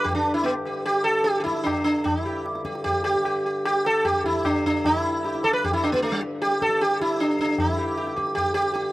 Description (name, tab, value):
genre	indian classical, Hindustani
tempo	152 BPM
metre	7/4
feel	straight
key	G raga bhupali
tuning	A4 = 440 Hz
part	sitar	melody	0.0-8.9 s	G3 to B4	-22 LUFS	right 1 dB	slapback echo
part	pedal harmonium	drone	0.0-8.9 s	G2 to D3	-34 LUFS	left 3 dB	none
part	tabla	percussion	0.1-8.9 s	none	-32 LUFS	left 2 dB	slapback echo
room	little or no reverb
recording	recorded outdoors, with no room sound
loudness	-21 LUFS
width	side -17 dB against mid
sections	0.0-8.9 A section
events	speeding up 0.0-8.9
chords	none